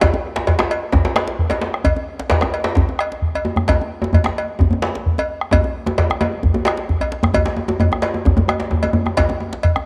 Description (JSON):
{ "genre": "west african traditional, West African drum ensemble", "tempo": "131 BPM", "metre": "4/4", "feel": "straight", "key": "none", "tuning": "none", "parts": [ { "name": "bombo", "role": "percussion", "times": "0.0-9.9 s", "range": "none", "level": "-22 LUFS", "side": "equal", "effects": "none" }, { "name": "cowbell", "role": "percussion", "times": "0.0-9.7 s", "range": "none", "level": "-26 LUFS", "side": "equal", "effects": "none" }, { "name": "djembe", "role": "percussion", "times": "0.0-9.9 s", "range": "none", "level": "-25 LUFS", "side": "equal", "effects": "none" }, { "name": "djembe", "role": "percussion", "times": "0.0-9.5 s", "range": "none", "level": "-23 LUFS", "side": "equal", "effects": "none" } ], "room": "light reverb, small room ambience", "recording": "none", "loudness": "-19 LUFS", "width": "mono", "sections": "0.0-9.9 A section", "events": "drum fill 6.9-7.3", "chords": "none" }